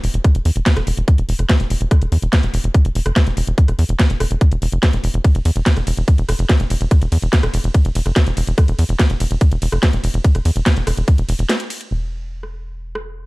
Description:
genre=psychedelic trance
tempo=144 BPM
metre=4/4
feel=straight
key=unclear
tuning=A4 = 440 Hz
part: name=tight sequencer bass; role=bass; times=0.0-13.3 s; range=E1 to E2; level=-18 LUFS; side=equal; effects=none
part: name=drum and bass drum kit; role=drums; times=0.0-13.0 s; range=hi-hat, ride cymbal, rim click, snare drum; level=-22 LUFS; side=equal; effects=overdrive
part: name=electronic kick drum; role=drums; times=0.2-11.2 s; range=none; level=-12 LUFS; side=equal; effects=overdrive
room=digital ambience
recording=dark, warm production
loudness=-14 LUFS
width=side -22 dB against mid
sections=0.0-11.9 A section; 11.9-13.3 B section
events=drop 0.0-11.9; break 11.5-11.9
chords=none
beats=| 0.24 0.66 1.08 1.50 | 1.91 2.33 2.75 3.16 | 3.58 4.00 4.41 4.83 | 5.25 5.66 6.08 6.50 | 6.91 7.33 7.75 8.16 | 8.58 8.99 9.41 9.83 | 10.24 10.66 11.08 11.49 | 11.91 12.33 12.74 13.16

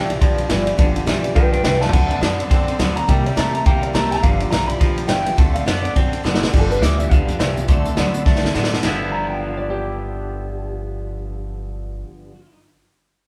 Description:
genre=rockabilly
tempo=209 BPM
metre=4/4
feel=swing 60% on 8ths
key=G mixolydian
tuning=A4 = 439 Hz
part: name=electric guitar through a small old amp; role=melody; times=0.0-12.6 s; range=G4 to B5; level=-27 LUFS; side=equal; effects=none
part: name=picked steel-string acoustic guitar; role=accompaniment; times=0.0-12.4 s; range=G2 to A4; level=-29 LUFS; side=equal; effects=none
part: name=twangy electric guitar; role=riff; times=0.0-12.4 s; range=G2 to E4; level=-28 LUFS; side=equal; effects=harmonic tremolo
part: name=upright bass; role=bass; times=0.0-12.0 s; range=F#1 to A2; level=-26 LUFS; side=equal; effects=none
part: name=vintage drum kit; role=drums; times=0.1-8.9 s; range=crash cymbal, hi-hat, kick drum, ride cymbal, snare drum, toms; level=-20 LUFS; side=equal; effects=none
room=moderate large studio reverb, RT60 1.2 s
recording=band playing live in one room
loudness=-18 LUFS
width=mono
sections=0.0-6.5 A section; 6.5-8.8 B section; 8.8-11.1 C section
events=drum fill 1.8, 6.2, 8.3-8.8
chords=0.0 G7; 1.9 D7; 3.1 C7; 4.2 G7; 5.4 D7; 6.5 G7; 7.7 D7; 8.8 G13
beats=0.21 0.50 | 0.79 1.07 1.36 1.65 | 1.93 2.22 2.51 2.79 | 3.08 3.37 3.66 3.94 | 4.23 4.52 4.81 5.09 | 5.38 5.67 5.96 6.24 | 6.53 6.82 7.11 7.39 | 7.68 7.97 8.26 8.55 | 8.83 9.12 9.41 9.70 | 9.98 10.27 10.56 10.85

